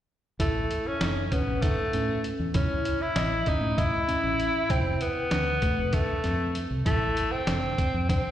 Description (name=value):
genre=progressive instrumental, band music in an uneven meter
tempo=195 BPM (eighths)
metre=7/8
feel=straight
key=unclear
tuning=A4 = 440 Hz
part: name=clear tenor saxophone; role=melody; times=0.4-8.3 s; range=A3 to E4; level=-28 LUFS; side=left 1 dB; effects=slapback echo, digital delay
part: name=mellow tine electric piano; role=arpeggios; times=0.4-8.3 s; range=A3 to D#5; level=-34 LUFS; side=right 1 dB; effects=overdrive, phaser, slapback echo, digital delay
part: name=fingered electric bass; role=bass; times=0.4-8.3 s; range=F1 to A2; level=-30 LUFS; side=equal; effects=none
part: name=trip hop sampler-style drum kit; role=drums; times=0.4-8.2 s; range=hi-hat, kick drum, snare drum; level=-28 LUFS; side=equal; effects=none
room=light reverb, digital ambience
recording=live gig heard through the venue's PA, recital hall reverb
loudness=-24 LUFS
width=side -11 dB against mid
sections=0.4-8.3 A section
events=none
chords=0.4 A; 4.7 F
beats=| 0.39 0.70 1.01 1.32 1.62 1.93 2.24 | 2.55 2.85 3.16 3.47 3.78 4.08 4.39 | 4.70 5.01 5.32 5.62 5.93 6.24 6.55 | 6.86 7.17 7.47 7.78 8.09